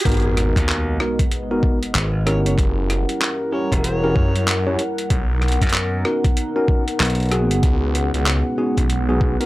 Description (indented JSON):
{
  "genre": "glitch hop",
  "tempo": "95 BPM",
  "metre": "4/4",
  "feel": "swing 62% on 16ths",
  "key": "G# minor",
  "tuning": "A4 = 440 Hz",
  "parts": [
    { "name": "boom bap sampler-style drum kit", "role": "drums", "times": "0.0-9.5 s", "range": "handclaps, hi-hat, rim click", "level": "-23 LUFS", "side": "equal", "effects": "overdrive, high-pass filter on hats, high-pass filter on snare, high-pass filter on room" },
    { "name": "riser and sub drop", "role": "sound effects", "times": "0.0-2.6 s", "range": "none", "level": "-28 LUFS", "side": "equal", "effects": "none" },
    { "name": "dark analog pad", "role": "sustained chords", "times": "0.4-9.5 s", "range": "G3 to F#5", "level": "-26 LUFS", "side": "equal", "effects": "chorus, phaser, sidechain pumping" },
    { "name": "bell-like tine electric piano", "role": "stabs", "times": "0.1-9.5 s", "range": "B3 to C#5", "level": "-24 LUFS", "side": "equal", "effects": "sidechain pumping, tape echo" },
    { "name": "phased detuned saw bass", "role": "bass", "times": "0.1-9.4 s", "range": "F#1 to F#2", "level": "-20 LUFS", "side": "equal", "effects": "phaser, high-pass filter" },
    { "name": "electronic kick drum", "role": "drums", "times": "0.1-9.4 s", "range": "none", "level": "-18 LUFS", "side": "equal", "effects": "overdrive" },
    { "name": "slap bass", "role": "bass", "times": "0.6-7.6 s", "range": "E1 to F#2", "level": "-20 LUFS", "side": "equal", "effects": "tube saturation" },
    { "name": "overdriven harmonica", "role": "melody", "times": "2.3-4.5 s", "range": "C#5", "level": "-32 LUFS", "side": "equal", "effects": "tape echo" }
  ],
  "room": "light reverb",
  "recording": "dry, gritty hardware recording, transformer saturation, high-pass filter",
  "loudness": "-17 LUFS",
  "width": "side -18 dB against mid",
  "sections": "0.1-9.5 A section",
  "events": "drop 0.1-9.5; impact 0.1-2.6",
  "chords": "0.1 G#m7; 2.6 F#7b9; 5.1 Bmaj7"
}